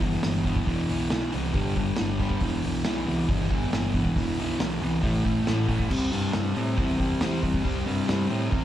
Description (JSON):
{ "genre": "garage rock duo or trio", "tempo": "138 BPM", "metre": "4/4", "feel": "straight", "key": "E minor", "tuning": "A4 = 440 Hz", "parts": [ { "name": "fuzz guitar", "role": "riff", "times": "0.0-8.6 s", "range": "E2 to C4", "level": "-26 LUFS", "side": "equal", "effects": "distortion" }, { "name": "growling picked electric bass", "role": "bass", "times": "0.0-8.6 s", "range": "E1 to A2", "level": "-29 LUFS", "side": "equal", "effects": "overdrive" }, { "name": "vintage drum kit", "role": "drums", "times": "0.0-8.6 s", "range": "crash cymbal, hi-hat, kick drum, snare drum", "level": "-29 LUFS", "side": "equal", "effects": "none" } ], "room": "light reverb", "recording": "live gig heard through the venue's PA, club reverb", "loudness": "-23 LUFS", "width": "side -12 dB against mid", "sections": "0.0-8.6 A section", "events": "none", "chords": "0.0 Em; 1.5 G5; 2.4 Em; 5.0 A5; 5.9 C" }